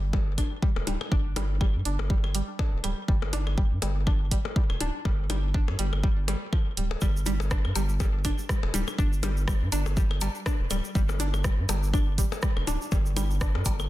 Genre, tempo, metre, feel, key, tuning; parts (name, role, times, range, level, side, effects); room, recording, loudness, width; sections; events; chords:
minimal techno; 122 BPM; 4/4; swing 56% on 16ths; A4 = 441 Hz
round analog bass; bass; 0.0-13.9 s; D1 to G2; -28 LUFS; equal; sidechain pumping
string-like resonator pluck; riff; 0.1-13.7 s; F3 to D4; -35 LUFS; equal; chorus, phaser, sidechain pumping, ping-pong delay
electronic kick drum; drums; 0.1-13.8 s; -26 LUFS; equal
percussion blips and claves; percussion; 0.1-13.9 s; -35 LUFS; left 5 dB; tape echo
house drum kit; drums; 0.4-13.8 s; hi-hat, rim click; -35 LUFS; right 2 dB; soft clipping on snare
tube shaker; percussion; 7.0-13.9 s; -40 LUFS; right 3 dB
little or no reverb; dense, heavily limited modern master; -24 LUFS; side -16 dB against mid
0.0-13.9 A section
0.0 G5